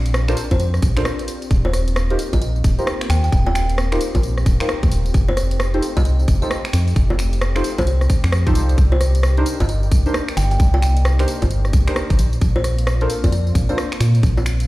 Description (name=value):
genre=UK garage, two-step garage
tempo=132 BPM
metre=4/4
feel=swing 63% on 16ths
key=C dorian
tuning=A4 = 440 Hz
part: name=soft string machine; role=sustained chords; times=0.0-14.7 s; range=A3 to D5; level=-32 LUFS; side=left 1 dB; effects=ensemble chorus, sidechain pumping
part: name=organ-like FM bass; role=bass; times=0.0-14.7 s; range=Eb1 to Bb2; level=-17 LUFS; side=equal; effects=none
part: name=garage drum kit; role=drums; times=0.1-14.7 s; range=bongos, finger snaps, hi-hat, rim click, tambourine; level=-26 LUFS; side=equal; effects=overdrive, studio reverb
part: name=deep mellow chord stab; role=stabs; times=0.3-13.8 s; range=D4 to C5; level=-26 LUFS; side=equal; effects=chorus, tape echo
part: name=kalimba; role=melody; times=0.5-13.8 s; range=C5 to G5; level=-28 LUFS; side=equal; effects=tape echo
part: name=electronic kick drum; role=drums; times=0.5-14.3 s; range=none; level=-17 LUFS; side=equal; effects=overdrive, studio reverb
room=digital ambience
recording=played on a big sound system in a bare room, stone room reverb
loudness=-15 LUFS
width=side -18 dB against mid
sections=0.0-14.7 A section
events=break 1.1-1.5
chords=0.0 Bbmaj9; 1.5 Eb69; 5.1 F9; 8.8 Cm9; 12.2 Bbmaj9